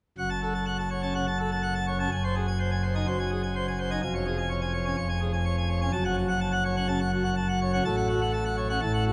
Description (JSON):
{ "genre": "classical, organ toccata", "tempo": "125 BPM", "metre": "4/4", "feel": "straight", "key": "F# minor", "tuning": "A4 = 438 Hz", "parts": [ { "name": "pipe organ, plenum", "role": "solo", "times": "0.2-9.1 s", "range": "E#1 to A5", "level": "-28 LUFS", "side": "equal", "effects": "none" } ], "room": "wet cathedral reverb, RT60 4.5 s", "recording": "none", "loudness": "-28 LUFS", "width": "mono", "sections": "0.2-9.1 A section", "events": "none", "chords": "0.2 F#m; 2.1 G#7/F#; 4.0 C#/E#; 5.9 F#m; 7.8 F#m/A" }